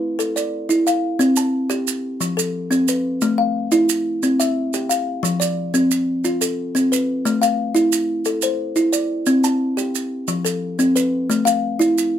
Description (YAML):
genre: southern african traditional, mbira-style interlocking cycle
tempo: 119 BPM (dotted quarters)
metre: 12/8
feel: straight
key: unclear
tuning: A4 = 440 Hz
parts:
  - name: kalimba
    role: arpeggios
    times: 0.0-12.1 s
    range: F3 to A5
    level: -17 LUFS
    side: left 1 dB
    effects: none
  - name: maracas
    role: percussion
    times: 0.2-12.1 s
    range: none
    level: -25 LUFS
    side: right 10 dB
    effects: none
room: light reverb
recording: none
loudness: -17 LUFS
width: side -10 dB against mid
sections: 0.0-1.2 A section; 1.2-12.2 B section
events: none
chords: 0.0 A5; 1.2 C5; 2.2 F; 3.2 A5; 4.2 C; 5.2 F; 7.3 Am; 9.3 C5; 10.3 F; 11.3 A5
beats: 0.20 0.70 | 1.20 1.71 2.21 2.72 | 3.22 3.72 4.23 4.73 | 5.24 5.74 6.25 6.75 | 7.25 7.76 8.26 8.77 | 9.27 9.78 10.28 10.79 | 11.29 11.80